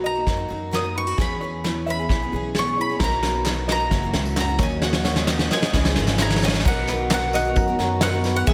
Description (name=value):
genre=indie folk with a building arrangement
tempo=132 BPM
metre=4/4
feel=straight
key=B major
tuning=A4 = 440 Hz
part: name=bowl-back mandolin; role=melody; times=0.0-8.5 s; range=E5 to D#6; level=-29 LUFS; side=equal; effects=slapback echo
part: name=fingerpicked steel-string acoustic guitar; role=accompaniment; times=0.0-3.0 s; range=B2 to A#4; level=-35 LUFS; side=equal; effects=none
part: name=picked twelve-string acoustic guitar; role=accompaniment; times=0.0-8.5 s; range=F#2 to A#4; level=-32 LUFS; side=equal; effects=none
part: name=tenor ukulele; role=arpeggios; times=0.0-8.5 s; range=E4 to A#5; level=-33 LUFS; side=equal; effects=slapback echo
part: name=upright bass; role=bass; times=0.0-8.5 s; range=F#1 to F#2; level=-29 LUFS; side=equal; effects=none
part: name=soft brush drum kit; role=drums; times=0.3-8.5 s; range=crash cymbal, kick drum, snare drum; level=-25 LUFS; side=equal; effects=none
part: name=felt-muted upright piano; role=accompaniment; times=3.0-8.5 s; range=F#1 to F#5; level=-35 LUFS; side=equal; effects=none
part: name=dark studio string section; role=sustained chords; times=3.0-8.5 s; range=C#3 to D#5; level=-37 LUFS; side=equal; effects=none
part: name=tambourine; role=percussion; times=3.1-8.5 s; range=none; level=-43 LUFS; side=equal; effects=none
part: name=group handclap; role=percussion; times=3.5-8.1 s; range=none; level=-36 LUFS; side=equal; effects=none
part: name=warm trombone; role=second line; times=6.7-8.5 s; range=F#4 to G#4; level=-31 LUFS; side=equal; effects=slapback echo
room=moderate lush hall reverb, RT60 1.8 s, small room ambience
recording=big arena sound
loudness=-22 LUFS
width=mono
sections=0.0-6.7 A section; 6.7-8.5 B section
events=build-up 0.0-6.7; drum fill 0.0-6.7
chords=0.0 Bmaj7; 1.2 E6; 3.0 Bmaj7; 3.9 F#7; 4.6 D#m7; 5.7 C#madd9; 6.7 Bmaj7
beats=0.27 0.73 | 1.18 1.64 2.10 2.55 | 3.01 3.46 3.92 4.38 | 4.83 5.29 5.74 6.20 | 6.65 7.11 7.56 8.02 | 8.47